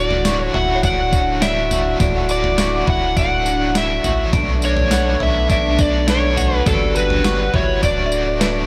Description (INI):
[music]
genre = dream pop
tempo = 103 BPM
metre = 4/4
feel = straight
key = D major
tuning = A4 = 438 Hz
[part]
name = overdriven slide guitar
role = melody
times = 0.0-8.7 s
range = A4 to F#5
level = -23 LUFS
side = equal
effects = delay
[part]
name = overdriven electric guitar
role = accompaniment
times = 0.0-8.7 s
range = G2 to F#4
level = -29 LUFS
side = equal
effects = tremolo, subtle chorus
[part]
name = mellow French horn section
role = sustained chords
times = 0.0-8.7 s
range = D3 to F#4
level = -27 LUFS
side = equal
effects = none
[part]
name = twelve-string electric guitar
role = arpeggios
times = 0.0-8.7 s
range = D4 to F#4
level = -26 LUFS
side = equal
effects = subtle chorus, delay
[part]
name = saturated sub bass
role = bass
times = 0.0-8.7 s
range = D1 to B1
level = -24 LUFS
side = equal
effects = none
[part]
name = gated 80s digital drum machine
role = drums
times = 0.1-8.5 s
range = kick drum, snare drum, tambourine, toms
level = -23 LUFS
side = equal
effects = gated reverb, gated reverb snare
[part]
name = synth chime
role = texture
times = 0.8-3.1, 8.1-8.7 s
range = B4 to F#5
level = -34 LUFS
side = equal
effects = none
[sound]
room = light reverb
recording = none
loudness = -17 LUFS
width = mono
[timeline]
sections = 0.0-8.7 A section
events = none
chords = 0.0 Dmaj9; 4.3 Bm9; 6.7 Gmaj7#11; 7.8 Dmaj9